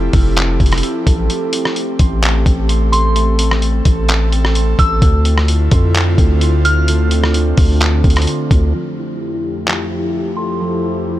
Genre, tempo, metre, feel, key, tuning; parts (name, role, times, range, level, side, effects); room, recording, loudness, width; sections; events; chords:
hip hop, atmospheric cloud-rap; 129 BPM; 4/4; half-time; F major; A4 = 443 Hz
airy breathy pad; sustained chords; 0.0-11.2 s; F2 to A4; -21 LUFS; left 1 dB; chorus, sidechain pumping, low-pass filter
concert harp; arpeggios; 0.0-11.2 s; D3 to E6; -24 LUFS; right 4 dB; low-pass filter, tape echo
long sustained 808-style bass; bass; 0.0-8.7 s; F1 to F2; -14 LUFS; equal
lo-fi sampler-style drum kit; drums; 0.1-9.8 s; handclaps, hi-hat, kick drum, rim click; -15 LUFS; equal
soft synth bell; melody; 2.9-6.9, 10.4-10.6 s; C6 to F6; -22 LUFS; right 1 dB; chorus, low-pass filter, tape echo
little or no reverb; -12 LUFS; side -14 dB against mid
0.0-8.7 A section; 8.7-11.2 B section
kick muted 1.3-1.8; filter sweep 8.7-11.2
0.0 Fmaj7; 1.3 Am7; 5.0 Dm7; 8.7 Fmaj7